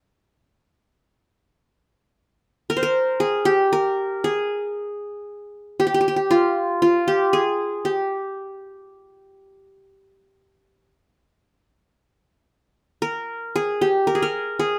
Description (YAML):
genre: arabic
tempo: 116 BPM (eighths)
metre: 10/8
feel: straight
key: unclear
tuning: A4 = 437 Hz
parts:
  - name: qanun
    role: solo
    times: 0.0-14.8 s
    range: F4 to C5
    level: -22 LUFS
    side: equal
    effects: none
room: light reverb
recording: none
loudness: -22 LUFS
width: mono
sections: 0.0-1.1 A section; 1.1-14.8 B section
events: none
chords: none